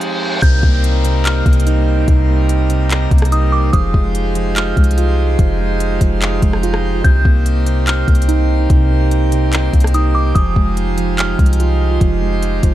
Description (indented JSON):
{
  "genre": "hip hop, atmospheric cloud-rap",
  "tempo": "145 BPM",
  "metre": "4/4",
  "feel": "half-time",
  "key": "C minor",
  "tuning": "A4 = 441 Hz",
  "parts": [
    { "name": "pipe organ, full organ", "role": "sustained chords", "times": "0.0-12.7 s", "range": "F3 to C5", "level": "-21 LUFS", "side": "right 1 dB", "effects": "sidechain pumping" },
    { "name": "smooth R&B drum kit", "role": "drums", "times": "0.0-12.7 s", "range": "handclaps, hi-hat, kick drum, rim click", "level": "-15 LUFS", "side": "equal", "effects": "none" },
    { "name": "reverse cymbal and downlifter", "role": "sound effects", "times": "0.0-3.7 s", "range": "none", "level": "-27 LUFS", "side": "left 1 dB", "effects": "none" },
    { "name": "delicate synth tine bell", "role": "melody", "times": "0.4-12.0 s", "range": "D6 to G6", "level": "-23 LUFS", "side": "right 1 dB", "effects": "chorus, low-pass filter, tape echo" },
    { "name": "muted felt-like synth keys", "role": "arpeggios", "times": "0.4-12.7 s", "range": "C3 to F4", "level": "-21 LUFS", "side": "right 4 dB", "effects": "chorus, low-pass filter, tape echo" },
    { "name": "soft 808-style bass", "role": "bass", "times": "0.4-12.7 s", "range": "F1 to C2", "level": "-15 LUFS", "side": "equal", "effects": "none" }
  ],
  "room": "little or no reverb",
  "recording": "dark, warm production",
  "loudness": "-12 LUFS",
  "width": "side -14 dB against mid",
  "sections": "0.4-12.7 A section",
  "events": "break 0.0-0.4; reverse cymbal 0.0-0.4",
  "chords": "0.4 Cm7; 3.7 Fm9; 7.0 Cm7; 10.4 Fm9"
}